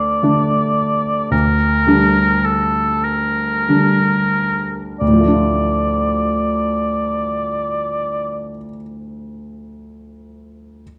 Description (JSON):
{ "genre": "classical, romantic duo for oboe and grand piano", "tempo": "28-38 BPM (dotted quarters)", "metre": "6/8", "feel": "rubato", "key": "D minor", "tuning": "A4 = 440 Hz", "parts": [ { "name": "warm oboe", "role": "melody", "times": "0.0-8.5 s", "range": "A4 to D5", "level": "-20 LUFS", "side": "equal", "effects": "none" }, { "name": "clear concert grand piano", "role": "accompaniment", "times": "0.0-10.8 s", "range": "D2 to F4", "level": "-20 LUFS", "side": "equal", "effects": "none" } ], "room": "wet recital hall reverb, RT60 1.3 s", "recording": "dark, warm production", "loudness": "-17 LUFS", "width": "mono", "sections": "0.0-5.0 A section; 5.0-8.6 B section", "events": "slowing down 0.0-5.0", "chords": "0.0 D5; 1.3 Gm/D; 5.0 Dm", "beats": "| 1.32 3.05 | 5.01 6.80" }